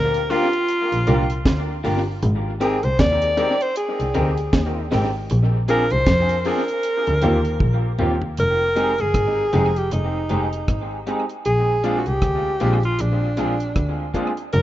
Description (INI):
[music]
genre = lovers rock reggae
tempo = 78 BPM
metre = 4/4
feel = swing 59% on 16ths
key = unclear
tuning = A4 = 440 Hz
[part]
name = warm alto saxophone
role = melody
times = 0.0-14.6 s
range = D4 to D5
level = -22 LUFS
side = equal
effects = tape echo
[part]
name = rich double bass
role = bass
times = 0.0-14.6 s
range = F1 to F2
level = -22 LUFS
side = equal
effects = none
[part]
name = deep reggae drum kit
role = drums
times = 0.1-14.6 s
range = hi-hat, kick drum, rim click, snare drum, toms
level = -24 LUFS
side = equal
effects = tape echo
[part]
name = warm baby grand piano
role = accompaniment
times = 0.3-14.3 s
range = Ab3 to Bb4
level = -27 LUFS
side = left 2 dB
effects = tape echo
[part]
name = electric guitar through a small old amp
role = stabs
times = 0.3-14.4 s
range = Ab3 to Ab4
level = -29 LUFS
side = right 3 dB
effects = ensemble chorus, tape echo
[sound]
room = light reverb, small room ambience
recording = rough home demo mix, nothing above 7.6 kHz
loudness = -18 LUFS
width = side -14 dB against mid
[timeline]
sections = 0.0-8.4 A section; 8.4-14.6 B section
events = drum fill 7.6-8.4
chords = 0.0 Gm7; 2.2 Abmaj7; 5.3 Bb9; 6.8 Eb69; 8.4 Fm7; 11.5 Bb7